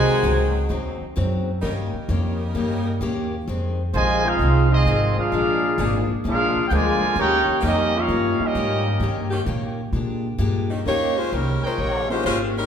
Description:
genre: jazz, big band swing.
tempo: 130 BPM.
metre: 4/4.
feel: swing 67% on 8ths.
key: Eb major.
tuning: A4 = 438 Hz.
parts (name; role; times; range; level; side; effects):
warm trumpet section; melody; 0.0-0.6, 3.9-9.3 s; C4 to Ab5; -22 LUFS; right 1 dB; none.
bright trombone section; second line; 0.0-0.5, 3.9-9.3 s; C3 to G4; -25 LUFS; right 1 dB; none.
picked steel-string acoustic guitar; accompaniment; 0.0-12.6 s; F2 to G4; -28 LUFS; left 3 dB; none.
edgy saxophone section; sustained chords; 0.0-2.9, 5.8-11.3 s; Eb3 to Bb4; -29 LUFS; left 1 dB; none.
upright bass; bass; 0.0-12.7 s; Ab1 to Bb2; -23 LUFS; equal; none.
bright saxophone section; melody; 10.9-12.7 s; G3 to Db5; -22 LUFS; equal; none.
warm grand piano; accompaniment; 10.9-12.2 s; Bb3 to G4; -30 LUFS; left 1 dB; none.
clear trumpet section; stabs; 11.6-12.2 s; Bb4 to G5; -29 LUFS; equal; none.
room: wet recital hall reverb, RT60 1.3 s.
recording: recorded in a church or concert hall.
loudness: -19 LUFS.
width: side -8 dB against mid.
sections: 0.0-10.9 A section; 10.9-12.7 B section.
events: none.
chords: 0.0 Ab7; 1.6 Eb7; 3.5 Fm7; 5.3 Bb7; 7.2 Eb7; 9.9 Bb6; 10.9 Eb7.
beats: 0.24 0.70 1.17 | 1.63 2.09 2.55 3.01 | 3.48 3.94 4.40 4.86 | 5.32 5.78 6.25 6.71 | 7.17 7.63 8.09 8.55 | 9.02 9.48 9.94 10.40 | 10.86 11.32 11.79 12.25.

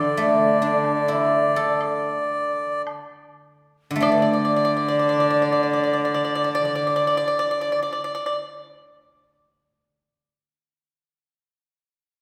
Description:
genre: chinese traditional, Chinese chamber ensemble.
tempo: 51-68 BPM.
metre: 4/4.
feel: rubato.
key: unclear.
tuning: A4 = 440 Hz.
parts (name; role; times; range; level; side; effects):
melodica; melody; 0.0-7.8 s; D5; -27 LUFS; equal; none.
mellow hollow xiao; second line; 0.0-8.0 s; B4 to D5; -29 LUFS; equal; none.
pipa; second line; 0.0-8.4 s; D5; -28 LUFS; equal; none.
warm cello; second line; 0.0-7.8 s; D3; -30 LUFS; equal; none.
guzheng; accompaniment; 0.0-10.5 s; D3 to A4; -25 LUFS; equal; none.
woodblock; percussion; 0.8-4.6 s; none; -36 LUFS; equal; none.
room: wet recital hall reverb, RT60 1.7 s.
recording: recorded in a church or concert hall.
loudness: -22 LUFS.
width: mono.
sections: 0.0-4.0 A section; 4.0-8.6 B section.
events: slowing down 0.0-4.0.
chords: none.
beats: 0.86 1.81 2.87 | 4.02 5.19 6.32 7.45.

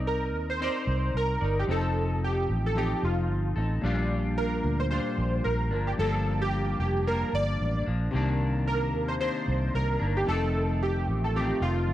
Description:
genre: indie pop, bedroom pop.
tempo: 112 BPM.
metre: 4/4.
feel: swing 55% on 16ths.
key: unclear.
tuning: A4 = 440 Hz.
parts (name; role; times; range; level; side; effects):
clean electric guitar; accompaniment; 0.0-11.9 s; F2 to D5; -31 LUFS; left 2 dB; lush chorus, vibrato effect.
vintage muted fingered electric bass; bass; 0.0-11.9 s; F1 to Eb2; -28 LUFS; equal; none.
warm analog keys; melody; 0.1-11.9 s; F4 to D5; -30 LUFS; right 1 dB; ensemble chorus, slapback echo.
room: light reverb.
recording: dark, warm production.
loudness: -25 LUFS.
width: side -13 dB against mid.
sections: 0.0-11.9 A section.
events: none.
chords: 0.0 Cm9; 1.7 F7; 3.8 Bb6; 5.7 Gm7; 8.1 Cm9; 10.3 F7.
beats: 0.08 0.61 1.15 | 1.69 2.23 2.77 3.30 | 3.84 4.38 4.92 5.45 | 5.99 6.53 7.07 7.60 | 8.14 8.68 9.21 9.75 | 10.29 10.82 11.36 11.90.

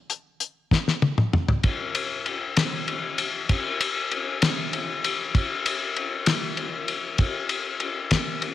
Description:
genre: rock.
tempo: 65 BPM (dotted quarters).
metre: 6/8.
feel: straight.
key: none.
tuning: none.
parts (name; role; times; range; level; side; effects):
cloth-damped thuddy drum kit; drums; 0.1-8.5 s; hi-hat, kick drum, ride cymbal, snare drum, toms; -22 LUFS; left 2 dB; none.
room: moderate plate reverb, RT60 1.8 s.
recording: 1960s-style stereo.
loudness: -23 LUFS.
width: side -12 dB against mid.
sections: 0.0-1.6 A section; 1.6-8.5 B section.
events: drum fill 0.7-1.6.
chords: none.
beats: 0.71 | 1.63 2.56 | 3.49 4.41 | 5.34 6.26 | 7.19 8.11.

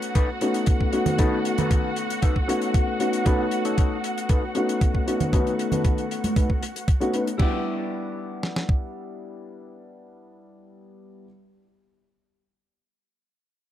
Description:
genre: nu-disco, nu disco.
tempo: 116 BPM.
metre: 4/4.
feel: straight.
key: E dorian.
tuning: A4 = 439 Hz.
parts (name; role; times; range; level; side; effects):
dark concert grand piano; accompaniment; 0.0-11.3 s; G3 to F#5; -26 LUFS; left 2 dB; tape echo.
muted symphonic violin section; sustained chords; 0.0-7.4 s; F#4 to F#5; -32 LUFS; right 1 dB; sidechain pumping, low-pass filter.
damped 70s drum kit; drums; 0.0-7.5 s; crash cymbal, hi-hat; -37 LUFS; left 5 dB; none.
clean electric guitar; riff; 0.1-11.3 s; D#4 to F#5; -32 LUFS; left 2 dB; wide subtle chorus, low-pass filter, tape echo.
clean 12-bit digital drum machine; drums; 0.2-8.8 s; kick drum, snare drum; -21 LUFS; equal; none.
congas; percussion; 1.1-1.7, 5.2-6.3 s; none; -28 LUFS; right 3 dB; none.
room: light reverb, small room ambience.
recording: echo-heavy mix.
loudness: -21 LUFS.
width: side -12 dB against mid.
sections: 0.0-7.4 A section; 7.4-11.5 B section.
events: filter sweep on clean electric guitar 0.0-7.4; filter sweep on violin section 0.0-7.4; clean electric guitar fill 2.2-3.3.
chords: 0.0 B7; 7.4 Em7.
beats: 0.15 0.67 | 1.19 1.71 2.22 2.74 | 3.26 3.77 4.29 4.81 | 5.33 5.84 6.36 6.88 | 7.39 7.91 8.43 8.95 | 9.46 9.98 10.50 11.02.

